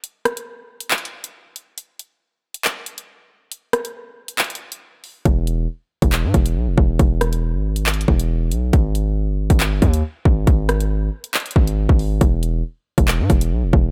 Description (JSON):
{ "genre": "hip hop, drill", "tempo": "138 BPM", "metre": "4/4", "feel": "half-time", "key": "G# harmonic minor", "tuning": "A4 = 438 Hz", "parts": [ { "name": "drill drum kit", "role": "drums", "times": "0.0-13.8 s", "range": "handclaps, hi-hat, kick drum, rim click", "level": "-20 LUFS", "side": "equal", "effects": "none" }, { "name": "distorted 808-style bass", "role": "bass", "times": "5.3-13.9 s", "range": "E1 to G#2", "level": "-21 LUFS", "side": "equal", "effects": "distortion" } ], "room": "digital ambience", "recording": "none", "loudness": "-19 LUFS", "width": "mono", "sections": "0.0-12.2 A section; 12.2-13.9 B section", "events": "break 0.0-5.3", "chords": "none" }